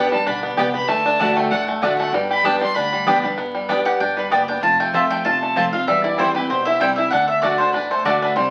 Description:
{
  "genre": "bluegrass",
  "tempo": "193 BPM",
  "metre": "4/4",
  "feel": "swing 53% on 8ths",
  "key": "G major",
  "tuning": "A4 = 440 Hz",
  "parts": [
    { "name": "clear fiddle", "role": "second line", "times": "0.0-8.5 s", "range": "B4 to C6", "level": "-27 LUFS", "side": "equal", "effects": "none" },
    { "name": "picked steel-string acoustic guitar", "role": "accompaniment", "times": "0.0-8.5 s", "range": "E2 to G4", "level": "-27 LUFS", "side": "equal", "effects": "none" },
    { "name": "bluegrass banjo", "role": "arpeggios", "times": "0.0-8.5 s", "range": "G3 to G4", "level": "-24 LUFS", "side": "equal", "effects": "none" },
    { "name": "mandolin", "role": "stabs", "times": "0.0-8.2 s", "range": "A3 to A5", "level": "-24 LUFS", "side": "equal", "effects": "none" },
    { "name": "upright bass", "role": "bass", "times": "0.0-8.5 s", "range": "E1 to E2", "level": "-40 LUFS", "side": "equal", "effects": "none" },
    { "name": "mandolin", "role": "melody", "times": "3.9-8.5 s", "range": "B4 to A5", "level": "-22 LUFS", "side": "equal", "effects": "none" }
  ],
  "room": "wet studio reverb, RT60 0.8 s",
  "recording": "very old 78 rpm record, vinyl crackle",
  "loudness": "-19 LUFS",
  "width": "mono",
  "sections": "0.0-3.4 A section; 3.4-8.5 B section",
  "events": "fiddle solo 0.0-3.4",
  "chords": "0.0 G; 0.9 D; 2.1 G; 4.6 F; 5.9 C/E; 7.1 D",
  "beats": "0.27 0.58 | 0.89 1.20 1.51 1.82 | 2.13 2.44 2.76 3.07 | 3.38 3.69 4.00 4.32 | 4.63 4.94 5.25 5.56 | 5.87 6.19 6.50 6.81 | 7.12 7.43 7.74 8.05 | 8.37"
}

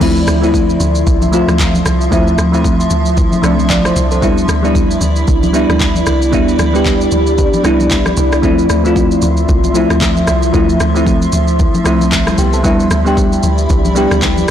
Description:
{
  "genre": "amapiano",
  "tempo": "114 BPM",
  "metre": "4/4",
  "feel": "swing 58% on 16ths",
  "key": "D dorian",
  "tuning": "A4 = 441 Hz",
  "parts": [
    { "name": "bell-like FM electric piano", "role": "accompaniment", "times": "0.0-14.5 s", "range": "F3 to D5", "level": "-14 LUFS", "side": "equal", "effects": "chorus, phaser" },
    { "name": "granular cloud pad", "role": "sustained chords", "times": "0.0-14.5 s", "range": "F3 to C6", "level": "-19 LUFS", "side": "right 1 dB", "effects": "built-in reverb, sidechain pumping" },
    { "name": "deep log drum bass", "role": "bass", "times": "0.0-14.5 s", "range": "C2 to D2", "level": "-16 LUFS", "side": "equal", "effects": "transformer saturation" },
    { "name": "afro-pop drum kit", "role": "drums", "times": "0.0-14.5 s", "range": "crash cymbal, handclaps, kick drum, rim click, shaker", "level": "-17 LUFS", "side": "equal", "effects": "none" },
    { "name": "congas", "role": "percussion", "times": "0.3-14.5 s", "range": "none", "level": "-22 LUFS", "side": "left 2 dB", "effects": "none" }
  ],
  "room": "light reverb",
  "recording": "blown-out, overdriven recording, overdrive",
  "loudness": "-10 LUFS",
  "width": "side -10 dB against mid",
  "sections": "0.0-14.5 A section",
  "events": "drop 0.0-14.5",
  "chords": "0.0 Dm9; 4.2 Cmaj9; 8.4 Dm9; 12.6 Cmaj9",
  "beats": "| 0.01 0.54 1.07 1.59 | 2.12 2.65 3.17 3.70 | 4.22 4.75 5.28 5.80 | 6.33 6.86 7.38 7.91 | 8.44 8.96 9.49 10.01 | 10.54 11.07 11.59 12.12 | 12.64 13.17 13.70 14.22"
}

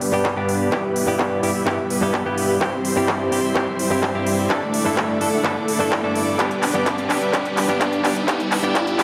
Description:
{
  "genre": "EDM, festival progressive house",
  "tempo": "127 BPM",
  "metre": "4/4",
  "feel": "straight",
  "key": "G major",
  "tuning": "A4 = 438 Hz",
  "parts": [
    { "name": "warm chamber string section", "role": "sustained chords", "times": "0.0-9.0 s", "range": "G4 to E6", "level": "-30 LUFS", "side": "equal", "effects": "sidechain pumping, low-pass filter" },
    { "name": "dense compressed supersaw", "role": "riff", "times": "0.0-9.0 s", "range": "G3 to F#5", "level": "-25 LUFS", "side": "equal", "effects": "sidechain pumping, low-pass filter, dub echo" },
    { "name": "detuned saw bass", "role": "bass", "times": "0.0-9.0 s", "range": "none", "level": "barely audible", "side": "none", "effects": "none" },
    { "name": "big-room dance drum kit", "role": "drums", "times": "0.0-9.0 s", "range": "handclaps, hi-hat", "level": "-27 LUFS", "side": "equal", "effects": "overdrive" },
    { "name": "riser", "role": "sound effects", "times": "2.3-9.0 s", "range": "none", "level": "-33 LUFS", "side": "equal", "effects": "none" },
    { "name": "direct-recorded clean electric guitar", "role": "accompaniment", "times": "0.1-9.0 s", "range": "G2 to A4", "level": "-26 LUFS", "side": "equal", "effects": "vintage 12-bit sampler grit, sidechain pumping, dub echo" },
    { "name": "electronic kick drum", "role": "drums", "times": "0.2-8.8 s", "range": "none", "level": "-29 LUFS", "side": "equal", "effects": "overdrive, high-pass filter on kick" }
  ],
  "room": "light reverb",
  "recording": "played on a big sound system in a bare room, stone room reverb, high-pass filter",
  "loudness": "-20 LUFS",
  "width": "mono",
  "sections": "0.0-9.0 A section",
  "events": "build-up 0.0-9.0; drum fill 0.0-9.0; filter sweep on supersaw synth 0.0-9.0; filter sweep on string section 0.0-9.0; riser 2.3-9.0",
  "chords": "0.0 G; 2.6 C/G; 4.5 Dsus2/G; 6.4 G6",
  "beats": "0.25 | 0.72 1.19 1.67 2.14 | 2.61 3.08 3.56 4.03 | 4.50 4.97 5.45 5.92 | 6.39 6.86 7.34 7.81 | 8.28 8.75"
}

